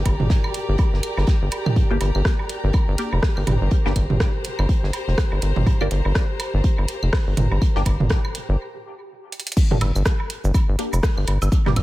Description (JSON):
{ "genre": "minimal techno", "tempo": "123 BPM", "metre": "4/4", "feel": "swing 59% on 16ths", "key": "G minor", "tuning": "A4 = 440 Hz", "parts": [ { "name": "rubbery square bass", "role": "bass", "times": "0.0-11.8 s", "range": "F1 to G1", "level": "-20 LUFS", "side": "equal", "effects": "sidechain pumping" }, { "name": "clear studio string section", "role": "texture", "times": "0.0-8.6 s", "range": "G4 to Bb5", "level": "-31 LUFS", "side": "equal", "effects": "sidechain pumping" }, { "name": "flickering grainy texture", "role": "texture", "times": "0.0-8.6 s", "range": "G4", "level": "-36 LUFS", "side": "equal", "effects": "built-in reverb, sidechain pumping" }, { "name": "electronic kick drum", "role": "drums", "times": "0.1-11.8 s", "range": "none", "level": "-20 LUFS", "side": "equal", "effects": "studio reverb" }, { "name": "house drum kit", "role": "drums", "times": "0.1-11.8 s", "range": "cabasa, crash cymbal, hi-hat, rim click", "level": "-29 LUFS", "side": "equal", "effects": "studio reverb" }, { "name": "loose indie drum kit", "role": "drums", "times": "0.1-11.8 s", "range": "hi-hat, snare drum", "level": "-38 LUFS", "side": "right 3 dB", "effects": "high-pass filter on hats, studio reverb, high-pass filter on snare, high-pass filter on room" }, { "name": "electronic woodblock, toms and claves", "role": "percussion", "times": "0.1-11.8 s", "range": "none", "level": "-27 LUFS", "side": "right 2 dB", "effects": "studio reverb, dub echo" }, { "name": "filtered dub chord stab", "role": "stabs", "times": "1.9-11.7 s", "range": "Bb3 to G4", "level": "-30 LUFS", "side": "left 1 dB", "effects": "phaser, ensemble chorus, dub echo" } ], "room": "little or no reverb", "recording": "echo-heavy mix", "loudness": "-18 LUFS", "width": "side -17 dB against mid", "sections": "0.0-9.6 A section; 9.6-11.8 B section", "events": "break 8.6-9.6; drum fill 9.3; drop 9.6-11.8", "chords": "0.0 Gm; 9.6 N.C." }